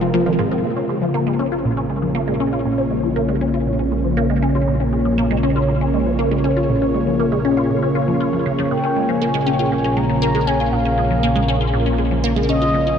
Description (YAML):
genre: ambient, sequencer-driven space music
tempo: 119 BPM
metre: 4/4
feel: straight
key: Bb minor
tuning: A4 = 440 Hz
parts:
  - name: sweeping resonant pad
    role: sustained chords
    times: 0.0-13.0 s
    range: C3 to Db5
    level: -20 LUFS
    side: equal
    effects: chorus
  - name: resonant blip pluck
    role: riff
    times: 0.0-13.0 s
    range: Ab2 to F4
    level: -21 LUFS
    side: left 1 dB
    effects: phaser, wide subtle chorus, tape echo
  - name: fat analog bass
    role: bass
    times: 0.0-13.0 s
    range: F1 to Bb1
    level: -24 LUFS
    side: equal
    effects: tube saturation
  - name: wide unison pluck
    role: arpeggios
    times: 0.1-0.6 s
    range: F3 to F4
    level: -29 LUFS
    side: right 4 dB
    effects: none
  - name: expressive synth lead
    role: melody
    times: 8.7-13.0 s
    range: Eb5 to Bb5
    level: -22 LUFS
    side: equal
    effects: chorus, tape echo
room: wet huge ambient reverb, RT60 9.1 s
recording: in a vast, echoing space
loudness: -16 LUFS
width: side -8 dB against mid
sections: 0.6-13.0 A section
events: none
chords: 0.0 Fm; 0.6 Bbm